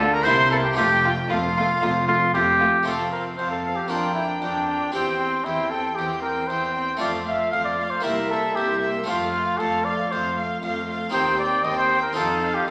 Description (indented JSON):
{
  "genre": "classical, baroque-style concerto movement with solo episodes",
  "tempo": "116 BPM",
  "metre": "4/4",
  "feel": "straight",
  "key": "F major",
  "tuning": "A4 = 440 Hz",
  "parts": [
    { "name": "mellow trumpet", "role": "melody", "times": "0.0-12.7 s", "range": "C4 to F5", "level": "-25 LUFS", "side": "equal", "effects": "none" },
    { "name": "warm chamber violin section", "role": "second line", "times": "0.0-12.7 s", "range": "E4 to G5", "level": "-31 LUFS", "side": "equal", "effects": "none" },
    { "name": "dark chamber viola section", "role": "accompaniment", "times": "0.0-12.7 s", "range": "A3 to Eb4", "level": "-35 LUFS", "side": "equal", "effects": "none" },
    { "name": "harpsichord", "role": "accompaniment", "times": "0.0-12.7 s", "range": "C2 to G4", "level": "-32 LUFS", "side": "equal", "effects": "none" },
    { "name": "warm chamber cello section", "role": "bass", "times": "0.0-12.6 s", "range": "C2 to D3", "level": "-36 LUFS", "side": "equal", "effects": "none" },
    { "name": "warm studio double bass section", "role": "bass", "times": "0.0-2.8 s", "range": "F1 to D2", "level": "-33 LUFS", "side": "equal", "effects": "none" },
    { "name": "rich chamber violin section", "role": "melody", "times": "0.1-12.7 s", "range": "F5 to C6", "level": "-37 LUFS", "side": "equal", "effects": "none" }
  ],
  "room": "wet recital hall reverb, RT60 1.3 s",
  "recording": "none",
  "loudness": "-23 LUFS",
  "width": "mono",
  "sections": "0.0-2.9 A section; 2.9-12.7 B section",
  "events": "none",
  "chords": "0.3 C7; 0.8 F; 3.9 Gm7/F; 4.9 C/E; 7.0 F; 8.0 C7; 9.1 F; 11.1 Cm/Eb; 12.2 F5"
}